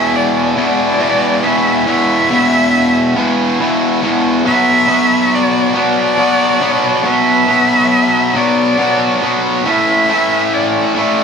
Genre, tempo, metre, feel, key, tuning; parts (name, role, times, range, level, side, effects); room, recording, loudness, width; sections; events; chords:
rock; 46 BPM (dotted quarters); 6/8; straight; A4 = 437 Hz
rich cello; melody; 0.0-11.2 s; D5 to E5; -15 LUFS; left 1 dB
distorted electric guitar; riff; 0.0-11.2 s; E2 to B3; -12 LUFS; equal; overdrive
moderate studio reverb, RT60 0.8 s; band playing live in one room; -10 LUFS; side -6 dB against mid
0.0-11.2 A section
0.0 E5; 4.5 Bm; 9.7 A5